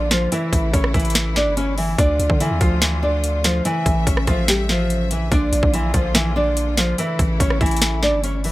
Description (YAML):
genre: hip hop, trap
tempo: 144 BPM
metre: 4/4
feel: half-time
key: unclear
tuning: A4 = 440 Hz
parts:
  - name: nylon-string guitar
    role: melody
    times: 0.0-8.5 s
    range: E3 to D5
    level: -21 LUFS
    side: equal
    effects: none
  - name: clear symphonic string section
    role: sustained chords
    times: 0.0-8.5 s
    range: C#3 to E5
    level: -30 LUFS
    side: left 2 dB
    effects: none
  - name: long sustained 808-style bass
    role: bass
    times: 0.0-8.5 s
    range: G1 to D3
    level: -22 LUFS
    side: equal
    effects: none
  - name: trap drum kit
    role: drums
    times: 0.1-8.5 s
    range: hi-hat, kick drum, rim click, snare drum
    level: -19 LUFS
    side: equal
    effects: overdrive
room: little or no reverb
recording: none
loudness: -16 LUFS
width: side -17 dB against mid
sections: 0.0-8.5 A section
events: none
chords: 0.3 A; 2.0 Dm; 3.7 A; 5.3 Bb; 7.0 A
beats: | 0.32 0.73 1.15 1.57 | 1.98 2.40 2.82 3.23 | 3.65 4.07 4.48 4.90 | 5.32 5.73 6.15 6.57 | 6.98 7.40 7.82 8.23